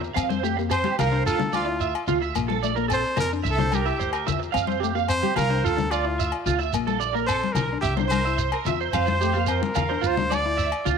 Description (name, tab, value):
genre	highlife guitar band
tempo	109 BPM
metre	4/4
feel	straight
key	F major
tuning	A4 = 440 Hz
part	electric guitar at the edge of break-up	accompaniment	0.0-10.9 s	A3 to F4	-32 LUFS	left 16 dB	none
part	electric guitar at the edge of break-up	arpeggios	0.0-11.0 s	F4 to F5	-26 LUFS	right 13 dB	ensemble chorus
part	upright bass	bass	0.0-11.0 s	Bb1 to F2	-28 LUFS	equal	none
part	shekere	percussion	0.0-11.0 s	none	-32 LUFS	right 4 dB	none
part	agogo bells	percussion	0.2-10.9 s	none	-34 LUFS	left 12 dB	none
part	congas	percussion	0.3-11.0 s	none	-29 LUFS	left 10 dB	none
part	warm trumpet	melody	0.7-10.9 s	F4 to D5	-27 LUFS	left 1 dB	none
room	light reverb, small room ambience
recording	1960s-style stereo with parts hard left and right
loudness	-21 LUFS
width	side -6 dB against mid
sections	0.0-11.0 A section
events	none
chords	0.2 Fsus2; 1.3 Dmadd9; 2.4 Bbmaj7; 3.4 C7; 4.5 Fsus2; 5.6 Dmadd9; 6.7 Bbmaj7; 7.8 C7; 8.9 Fsus2; 10.0 Dmadd9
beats	| 0.15 0.70 1.25 1.80 | 2.35 2.90 3.45 4.00 | 4.54 5.09 5.64 6.19 | 6.74 7.29 7.84 8.39 | 8.94 9.49 10.04 10.59